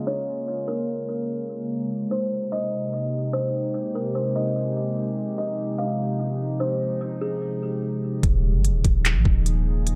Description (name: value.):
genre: hip hop, atmospheric cloud-rap.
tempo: 147 BPM.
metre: 4/4.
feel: half-time.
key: Ab major.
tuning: A4 = 440 Hz.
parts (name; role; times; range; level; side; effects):
kalimba; melody; 0.0-7.4 s; Ab4 to F5; -31 LUFS; equal; low-pass filter, analog delay.
warbly tape-like pad; sustained chords; 0.0-10.0 s; C3 to Ab4; -30 LUFS; equal; chorus, built-in reverb, sidechain pumping.
soft 808-style bass; bass; 8.2-10.0 s; Eb1 to Bb1; -23 LUFS; equal; none.
smooth R&B drum kit; drums; 8.2-10.0 s; handclaps, hi-hat, kick drum; -24 LUFS; equal; none.
room: little or no reverb.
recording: echo-heavy mix, low-pass filter.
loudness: -25 LUFS.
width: mono.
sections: 0.0-8.2 A section; 8.2-10.0 B section.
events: filter sweep 0.0-8.2.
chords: 0.0 Bbm7; 1.7 Abmaj9; 5.0 Fm9; 8.2 Eb9sus4.